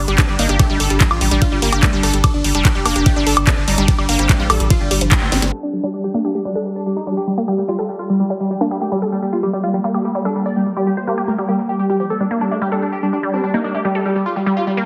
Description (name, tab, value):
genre	psychedelic trance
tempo	146 BPM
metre	4/4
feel	straight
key	G minor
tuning	A4 = 437 Hz
part	supersaw stab	melody	0.0-14.8 s	G3 to D5	-25 LUFS	equal	phaser, sidechain pumping, delay
part	pulsing gated texture	sustained chords	0.0-14.9 s	G3 to G4	-25 LUFS	equal	chorus, built-in reverb, sidechain pumping
part	round analog bass	bass	0.0-5.5 s	F1 to A1	-22 LUFS	equal	none
part	unison pluck	riff	0.1-14.8 s	F3 to A4	-24 LUFS	equal	sidechain pumping, digital delay
part	drum and bass drum kit	drums	0.1-5.6 s	crash cymbal, handclaps, hi-hat, ride cymbal, snare drum, woodblock	-22 LUFS	equal	studio ambience
part	formant-sweep wobble bass	second line	0.2-4.6, 13.3-14.7 s	C4 to G4	-33 LUFS	equal	none
part	electronic kick drum	drums	0.2-5.2 s	none	-17 LUFS	equal	studio ambience
room	moderate digital room reverb, RT60 1.1 s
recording	heavily compressed radio sound, multiband compression, low-pass filter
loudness	-17 LUFS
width	mono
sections	0.0-5.5 A section; 5.5-14.9 B section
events	drop 0.0-5.5; band accent 5.1; drum fill 5.3; filter sweep on synth texture 5.5-14.9; filter sweep 5.5-14.9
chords	0.0 G5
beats	0.18 | 0.59 1.01 1.42 1.83 | 2.24 2.65 3.06 3.47 | 3.88 4.29 4.70 5.12 | 5.53 5.94 6.35 6.76 | 7.17 7.58 7.99 8.40 | 8.81 9.22 9.64 10.05 | 10.46 10.87 11.28 11.69 | 12.10 12.51 12.92 13.34 | 13.75 14.16 14.57